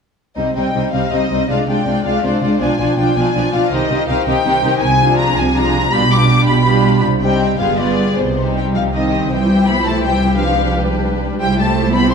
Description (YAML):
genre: classical, dramatic, fast romantic movement for symphony orchestra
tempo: 102-116 BPM (dotted quarters)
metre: 6/8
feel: straight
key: C minor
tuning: A4 = 442 Hz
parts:
  - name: rich chamber violin section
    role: second line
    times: 0.4-12.1 s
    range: Eb4 to Eb5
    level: -22 LUFS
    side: left 3 dB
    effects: none
  - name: warm symphonic viola section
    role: accompaniment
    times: 0.4-12.1 s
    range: Eb3 to E4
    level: -18 LUFS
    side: right 1 dB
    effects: none
  - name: warm symphonic cello section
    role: bass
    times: 0.4-12.1 s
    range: G2 to C4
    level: -20 LUFS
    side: right 1 dB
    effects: none
  - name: warm symphonic double bass section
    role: bass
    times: 0.4-12.1 s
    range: G1 to C2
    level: -20 LUFS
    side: right 3 dB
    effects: none
  - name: rich symphonic violin section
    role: melody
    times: 0.6-12.1 s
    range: C5 to D6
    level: -18 LUFS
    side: left 3 dB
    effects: none
room: wet scoring stage reverb, RT60 1.8 s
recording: dark, warm production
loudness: -13 LUFS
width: side -6 dB against mid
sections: 0.4-9.3 A section; 9.3-12.1 B section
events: none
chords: 0.4 Cm; 1.5 Dm7b5/C; 2.6 Bdim7; 3.7 Cm; 4.8 Dm7b5/C; 5.9 G7/B; 7.0 Cm; 7.6 G7b9; 8.2 Cm; 9.3 C; 10.4 G7/C; 11.4 C